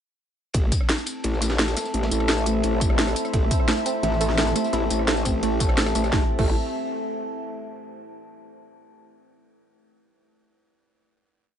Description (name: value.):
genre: dark technical drum and bass.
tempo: 172 BPM.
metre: 4/4.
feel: straight.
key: A minor.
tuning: A4 = 440 Hz.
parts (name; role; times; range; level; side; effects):
deep dark ambient pad; sustained chords; 1.1-6.3 s; A3 to C5; -31 LUFS; left 1 dB; chorus, built-in reverb, sidechain pumping.
growl bass; bass; 0.5-6.5 s; A1; -25 LUFS; equal; chorus, overdrive, sidechain pumping.
crunchy breakbeat drum kit; drums; 0.5-6.1 s; ride cymbal, snare drum; -37 LUFS; equal; high-pass filter on cymbals, high-pass filter on snare, high-pass filter on room.
drum and bass drum kit; drums; 0.5-6.5 s; crash cymbal, hi-hat, rim click, snare drum, tambourine; -26 LUFS; equal; overdrive.
electronic kick drum; drums; 0.5-6.5 s; none; -23 LUFS; equal; none.
warbly tape-like pad; texture; 0.8-7.5 s; C4 to A5; -30 LUFS; left 2 dB; chorus, built-in reverb, sidechain pumping.
warbly dusty pluck; arpeggios; 3.3-6.5 s; A3 to A4; -29 LUFS; right 6 dB; chorus, sidechain pumping, dub echo.
metallic wobble bass; bass; 4.0-4.5 s; A1; -24 LUFS; equal; distortion, chorus.
room: light reverb, digital ambience.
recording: nothing above 10.8 kHz.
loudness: -20 LUFS.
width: side -9 dB against mid.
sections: 0.5-6.1 drop; 6.1-7.5 final chord.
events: drop 0.5-6.1.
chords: 0.5 Am.